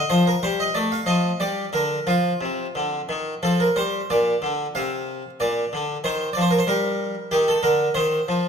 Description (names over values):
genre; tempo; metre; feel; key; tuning
classical, baroque-style suite movement for harpsichord; 92 BPM; 3/4; rubato; Bb major; A4 = 442 Hz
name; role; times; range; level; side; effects
harpsichord; solo; 0.0-8.5 s; Bb2 to F5; -20 LUFS; equal; none
room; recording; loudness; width
moderate recital hall reverb, RT60 1.6 s; none; -20 LUFS; side -6 dB against mid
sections
0.0-4.1 A section; 4.1-8.5 B section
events
none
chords
0.1 F; 1.4 Gm; 2.1 Cmadd11; 3.4 F5; 4.1 Bb; 6.0 Ebmaj13; 8.0 F5/Eb